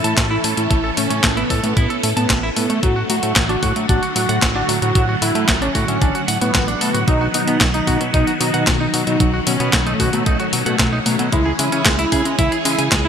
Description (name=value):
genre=italo disco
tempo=113 BPM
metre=4/4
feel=straight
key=unclear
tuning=A4 = 440 Hz
part: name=wide unison lead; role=melody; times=0.0-13.1 s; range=A3 to F#4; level=-22 LUFS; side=equal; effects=cassette tape, digital delay
part: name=phased string machine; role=sustained chords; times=0.0-13.1 s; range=D3 to A4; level=-23 LUFS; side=equal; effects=ensemble chorus, phaser
part: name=direct-recorded clean electric guitar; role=arpeggios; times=0.0-13.1 s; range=F#3 to A5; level=-24 LUFS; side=right 2 dB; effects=vintage 12-bit sampler grit, ping-pong delay
part: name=fat analog bass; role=bass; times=0.0-13.1 s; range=A1 to C#3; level=-22 LUFS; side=equal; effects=none
part: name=clean 12-bit digital drum machine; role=drums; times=0.0-13.0 s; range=handclaps, hi-hat, snare drum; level=-20 LUFS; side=left 1 dB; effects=none
part: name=electronic kick drum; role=drums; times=0.2-13.0 s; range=none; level=-19 LUFS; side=equal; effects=none
room=moderate plate reverb, RT60 2.4 s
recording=bright 1980s-style digital production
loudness=-15 LUFS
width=side -8 dB against mid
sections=0.0-13.1 A section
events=none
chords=0.0 A; 2.8 D/A; 7.1 B; 11.3 C#m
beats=0.17 | 0.71 1.24 1.77 2.30 | 2.83 3.36 3.89 4.42 | 4.95 5.49 6.01 6.55 | 7.08 7.61 8.14 8.67 | 9.20 9.73 10.26 10.79 | 11.32 11.86 12.39 12.92